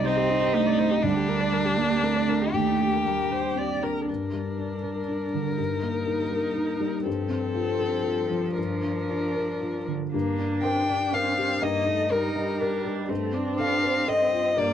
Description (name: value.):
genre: neoclassical piano and strings.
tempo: 121 BPM.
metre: 3/4.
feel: rubato.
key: G minor.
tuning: A4 = 439 Hz.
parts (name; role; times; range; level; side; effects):
warm violin; melody; 0.0-14.7 s; D4 to G5; -27 LUFS; left 4 dB; none.
warm cello; second line; 0.0-14.7 s; F3 to Eb4; -30 LUFS; right 6 dB; none.
felt-muted upright piano; accompaniment; 0.0-14.7 s; C2 to G5; -28 LUFS; left 2 dB; none.
rich viola; accompaniment; 0.0-14.7 s; G3 to D5; -32 LUFS; right 2 dB; none.
room: moderate booth ambience, RT60 0.2 s.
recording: none.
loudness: -23 LUFS.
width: side -9 dB against mid.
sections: 0.0-4.1 A section; 4.1-10.1 B section; 10.1-14.7 C section.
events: none.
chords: 0.0 Cmadd9; 1.0 Gm/D; 2.5 Ebmaj7; 4.1 Gm; 5.6 Eb/G; 7.1 F/G; 8.6 Bb/G; 10.1 Gm; 11.6 Eb/G; 13.1 F/G.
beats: 0.05 0.54 | 1.03 1.53 2.03 | 2.54 3.06 3.57 | 4.09 4.59 5.09 | 5.58 6.08 6.58 | 7.07 7.56 8.06 | 8.57 9.10 9.62 | 10.14 10.64 11.13 | 11.62 12.12 12.61 | 13.10 13.59 14.08 | 14.56.